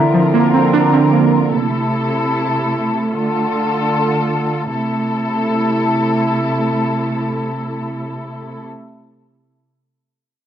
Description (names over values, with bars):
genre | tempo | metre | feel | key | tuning
hip hop | free time | none | none | A phrygian | A4 = 444 Hz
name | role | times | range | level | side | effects
warbly lo-fi synth keys | accompaniment | 0.0-1.5 s | D3 to D4 | -13 LUFS | right 3 dB | chorus, low-pass filter
muted studio string section | sustained chords | 0.0-8.6 s | C3 to Bb4 | -17 LUFS | equal | none
concert harp | arpeggios | 0.0-1.8 s | E4 to E5 | -22 LUFS | left 1 dB | low-pass filter, tape echo
room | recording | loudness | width
digital ambience | dry, gritty hardware recording, transformer saturation | -14 LUFS | side -10 dB against mid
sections
0.0-4.7 A section; 4.7-7.9 B section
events
none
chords
0.0 Bbadd9; 1.5 Am; 3.1 Dm; 4.7 Am